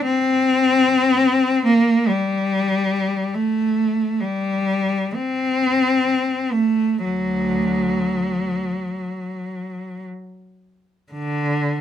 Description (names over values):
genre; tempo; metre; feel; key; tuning
classical, free, expressive piece for unaccompanied cello; free time; none; none; unclear; A4 = 440 Hz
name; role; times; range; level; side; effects
rich cello; solo; 0.0-11.8 s; D2 to C4; -18 LUFS; left 1 dB; none
room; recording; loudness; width
moderate studio reverb, RT60 0.7 s; none; -17 LUFS; side -10 dB against mid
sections
0.0-11.1 A section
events
none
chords
none